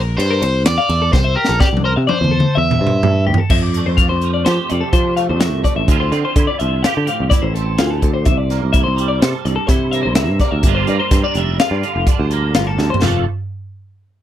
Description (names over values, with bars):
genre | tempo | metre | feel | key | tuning
math rock and midwest emo | 126 BPM | 5/4 | straight | unclear | A4 = 439 Hz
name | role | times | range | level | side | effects
twelve-string electric guitar | arpeggios | 0.0-13.2 s | F4 to F5 | -21 LUFS | left 8 dB | none
picked electric bass | bass | 0.0-13.2 s | F1 to F3 | -18 LUFS | equal | none
biting overdriven guitar | melody | 0.2-3.2 s | G4 to E5 | -19 LUFS | right 1 dB | slapback echo
crisp fusion drum kit | drums | 0.2-13.1 s | crash cymbal, hi-hat, kick drum, ride cymbal, snare drum, splash cymbal, toms | -17 LUFS | equal | none
twangy electric guitar | accompaniment | 3.5-13.2 s | F2 to A4 | -23 LUFS | right 16 dB | ensemble chorus
room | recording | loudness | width
little or no reverb | none | -13 LUFS | side -11 dB against mid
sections
0.0-3.5 A section; 3.5-13.0 B section; 13.0-14.2 C section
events
drum fill 1.1-3.5, 12.8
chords
0.0 C7; 3.5 Dm9; 8.3 C13; 10.6 Gm9; 13.0 F6